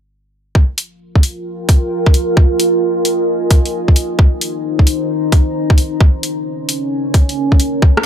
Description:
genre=UK garage, two-step garage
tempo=132 BPM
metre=4/4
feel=swing 66% on 16ths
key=G phrygian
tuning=A4 = 440 Hz
part: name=electronic kick drum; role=drums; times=0.6-7.9 s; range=none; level=-10 LUFS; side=equal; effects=none
part: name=deep dark ambient pad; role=texture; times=1.4-8.1 s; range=Db4 to Bb5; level=-17 LUFS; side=equal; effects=chorus, built-in reverb, sidechain pumping
part: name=punchy analog drum machine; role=drums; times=0.8-8.0 s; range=hi-hat, rim click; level=-18 LUFS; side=left 1 dB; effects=overdrive
room=light reverb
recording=echo-heavy mix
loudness=-12 LUFS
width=side -9 dB against mid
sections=0.6-8.1 A section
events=none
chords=0.6 Gm7; 2.4 Fm7; 4.0 Cm7; 6.0 Bbm7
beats=| 0.55 1.00 1.46 1.91 | 2.37 2.82 3.28 3.73 | 4.19 4.64 5.10 5.55 | 6.00 6.46 6.91 7.37 | 7.82

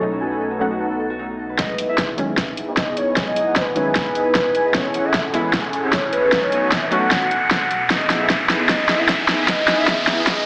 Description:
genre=future bass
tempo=152 BPM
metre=4/4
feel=half-time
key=E major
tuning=A4 = 440 Hz
part: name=soft round pluck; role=accompaniment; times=0.0-7.1 s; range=D#3 to F#4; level=-26 LUFS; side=equal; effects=chorus, sidechain pumping, tape echo
part: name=shimmering ambient pad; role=sustained chords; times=0.0-10.5 s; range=E2 to G#5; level=-31 LUFS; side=equal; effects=chorus, built-in reverb, sidechain pumping
part: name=concert harp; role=arpeggios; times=0.0-3.9, 7.9-10.5 s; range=C#4 to F#5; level=-31 LUFS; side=equal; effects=none
part: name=fat analog bass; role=bass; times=0.0-1.6 s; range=B1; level=-38 LUFS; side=equal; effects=sidechain pumping
part: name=soft supersaw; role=riff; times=0.2-10.4 s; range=B3 to G#5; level=-24 LUFS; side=equal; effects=analog chorus, sidechain pumping, low-pass filter, tape echo
part: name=soft octave-layered synth lead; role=melody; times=1.6-10.5 s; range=B4 to F#5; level=-21 LUFS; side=equal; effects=chorus, phaser, sidechain pumping, tape echo
part: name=dubstep drum kit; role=drums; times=1.6-10.4 s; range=hi-hat, snare drum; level=-20 LUFS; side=equal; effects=none
part: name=electronic kick drum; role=drums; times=1.6-10.4 s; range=none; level=-27 LUFS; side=equal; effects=distortion
part: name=riser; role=sound effects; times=4.1-10.5 s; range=none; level=-24 LUFS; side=equal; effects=none
room=wet digital room reverb, RT60 1.1 s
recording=played on a big sound system in a bare room, large studio reverb, high-pass filter, AM radio sound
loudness=-16 LUFS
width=side -28 dB against mid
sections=0.0-1.6 A section; 1.6-10.5 B section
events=build-up 1.6-10.5; drum fill 1.6-10.5; filter sweep on supersaw synth 1.6-10.5; filter sweep 1.6-10.5; riser 4.1-10.5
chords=0.0 B7; 1.6 Emaj7; 4.7 Amaj7; 6.3 B7; 7.9 Emaj7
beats=| 0.01 0.40 0.80 1.19 | 1.59 1.98 2.38 2.77 | 3.17 3.56 3.96 4.35 | 4.75 5.14 5.54 5.93 | 6.33 6.72 7.11 7.51 | 7.90 8.30 8.69 9.09 | 9.48 9.88 10.27

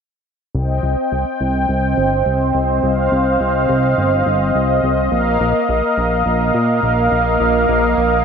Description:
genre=synthwave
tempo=105 BPM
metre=4/4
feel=straight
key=C minor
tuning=A4 = 443 Hz
part: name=fat analog bass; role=bass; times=0.5-8.2 s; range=G1 to Bb2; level=-19 LUFS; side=equal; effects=none
part: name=brassy analog pad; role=sustained chords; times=0.6-8.2 s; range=Bb3 to G5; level=-15 LUFS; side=right 1 dB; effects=chorus
room=wet lush hall reverb, RT60 1.9 s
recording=bright 1980s-style digital production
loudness=-14 LUFS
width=side -6 dB against mid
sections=0.5-8.2 A section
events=filter sweep on analog synth bass 0.5-8.2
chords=0.5 Cm; 5.1 Bbsus4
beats=| 0.55 1.12 1.69 2.26 | 2.83 3.41 3.98 4.55 | 5.12 5.69 6.26 6.83 | 7.41 7.98

